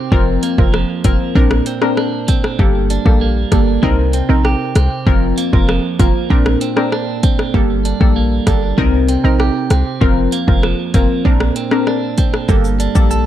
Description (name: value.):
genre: dancehall.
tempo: 97 BPM.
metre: 4/4.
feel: straight.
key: G minor.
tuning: A4 = 440 Hz.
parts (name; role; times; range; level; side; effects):
clean electric guitar; arpeggios; 0.0-13.3 s; F2 to A4; -21 LUFS; right 7 dB; tape echo.
analog pluck; accompaniment; 0.1-13.1 s; Bb3 to Bb4; -18 LUFS; left 2 dB; chorus, sidechain pumping.
warm 808-style bass; bass; 0.1-13.3 s; F1 to C2; -16 LUFS; equal; none.
deep house drum kit; drums; 0.1-13.3 s; hi-hat, kick drum, rim click, shaker; -16 LUFS; equal; overdrive.
room: digital ambience.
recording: dark, warm production.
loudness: -12 LUFS.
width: side -12 dB against mid.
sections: 0.0-12.5 A section.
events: none.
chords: 0.1 Fsus4; 1.4 Bbadd9; 2.6 Gmadd9; 3.8 Cm7; 5.1 Fsus4; 6.3 Bbadd9; 7.5 Gmadd9; 8.8 Cm7; 10.0 Fsus4; 11.3 Bbadd9; 12.5 Gmadd9.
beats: | 0.12 0.74 1.35 1.97 | 2.59 3.21 3.83 4.45 | 5.07 5.68 6.30 6.92 | 7.54 8.16 8.78 9.40 | 10.02 10.63 11.25 11.87 | 12.49 13.11.